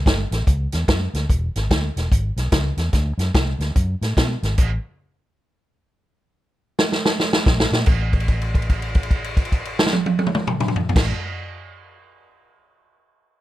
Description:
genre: electric blues shuffle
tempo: 146 BPM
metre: 4/4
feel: swing 63% on 8ths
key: unclear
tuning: A4 = 440 Hz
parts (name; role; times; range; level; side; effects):
- vintage muted fingered electric bass; bass; 0.1-4.8, 7.5-11.1 s; E1 to B2; -23 LUFS; equal; none
- vintage drum kit; drums; 0.1-11.0 s; crash cymbal, hi-hat, kick drum, snare drum, toms; -19 LUFS; equal; none
room: little or no reverb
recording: none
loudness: -18 LUFS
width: side -15 dB against mid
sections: 0.0-7.9 A section; 7.9-11.2 B section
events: stop 4.6-7.5; drum fill 6.2-7.9; held note 7.9-10.9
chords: none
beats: 0.06 0.47 0.88 | 1.29 1.70 2.11 2.52 | 2.94 3.35 3.76 4.17 | 4.58 4.99 5.40 5.81 | 6.22 6.64 7.05 7.46 | 7.87 8.28 8.69 9.10 | 9.51 9.92 10.33 10.74

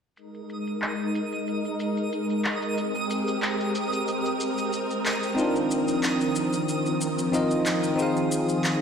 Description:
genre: sunset chillout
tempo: 92 BPM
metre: 4/4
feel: swing 53% on 16ths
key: unclear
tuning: A4 = 440 Hz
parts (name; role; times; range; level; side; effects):
- soft string machine; sustained chords; 0.2-8.8 s; Eb3 to Bb4; -27 LUFS; equal; ensemble chorus
- electronic shaker and handclaps; drums; 0.2-8.8 s; none; -32 LUFS; equal; low-pass filter on perc, low-pass filter on snare
- twinkling granular texture; texture; 0.6-8.8 s; Eb6; -35 LUFS; right 3 dB; built-in reverb
- bell-like tine electric piano; accompaniment; 5.3-8.8 s; C4 to F5; -25 LUFS; equal; auto-pan, ping-pong delay
room: moderate lush hall reverb, RT60 2.1 s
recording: played on a big sound system in a bare room, stone room reverb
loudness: -24 LUFS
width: side -6 dB against mid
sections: 0.2-8.8 A section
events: filter sweep on drum 0.2-8.8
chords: 0.2 Bb7sus4; 2.8 Abmaj9; 5.4 Cm11; 8.0 Fm7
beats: | 0.17 0.82 1.47 2.12 | 2.77 3.43 4.08 4.73 | 5.38 6.04 6.69 7.34 | 7.99 8.64

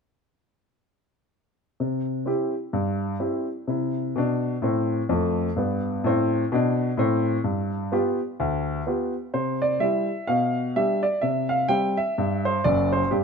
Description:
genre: jazz, stride piano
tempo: 127 BPM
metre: 4/4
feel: swing 59% on 8ths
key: C major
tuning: A4 = 444 Hz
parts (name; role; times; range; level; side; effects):
- clear grand piano; solo; 1.8-13.2 s; F#1 to G5; -22 LUFS; equal; none
room: light reverb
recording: close, detailed microphones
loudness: -22 LUFS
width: side -5 dB against mid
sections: 1.8-9.3 A section; 9.3-13.2 B section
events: none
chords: 1.8 C; 5.6 C5/G; 7.5 G7; 9.3 C; 10.3 G7/B; 11.2 C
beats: | 1.81 2.28 2.75 3.22 | 3.69 4.16 4.63 5.10 | 5.57 6.04 6.52 6.99 | 7.46 7.93 8.40 8.87 | 9.34 9.81 10.28 10.75 | 11.22 11.70 12.17 12.64 | 13.11

